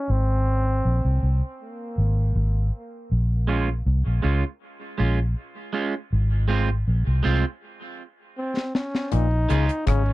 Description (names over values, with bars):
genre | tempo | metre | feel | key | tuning
dub reggae | 80 BPM | 4/4 | straight | unclear | A4 = 440 Hz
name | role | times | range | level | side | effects
clear trombone | melody | 0.0-2.7, 8.4-10.1 s | Bb3 to Eb4 | -29 LUFS | equal | low-pass filter, dub echo
vintage muted fingered electric bass | bass | 0.1-10.1 s | Ab1 to Db2 | -20 LUFS | equal | none
electric guitar at the edge of break-up | accompaniment | 3.5-9.7 s | Ab3 to F4 | -28 LUFS | right 5 dB | high-pass filter, low-pass filter, dub echo
deep reggae drum kit | drums | 8.6-10.1 s | hi-hat, kick drum, rim click, snare drum | -25 LUFS | left 1 dB | none
auto-wah clav | arpeggios | 9.1-10.0 s | Bb2 to Db3 | -30 LUFS | left 13 dB | overdrive, dub echo
mellow tonewheel organ | accompaniment | 9.3-10.1 s | Bb2 to Db4 | -45 LUFS | left 1 dB | none
room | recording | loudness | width
little or no reverb | dry, close 1970s-style studio recording | -21 LUFS | side -18 dB against mid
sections
0.0-9.1 A section; 9.1-10.1 B section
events
break 0.0-3.1; filter sweep 0.0-10.1; stop 7.6-9.1; drum fill 8.4-9.1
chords
0.1 Ab; 3.1 Bbm7; 6.1 Ab6; 9.1 Bbm7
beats
| 0.09 0.84 1.59 2.35 | 3.10 3.85 4.61 5.36 | 6.11 6.86 7.61 8.37 | 9.12 9.87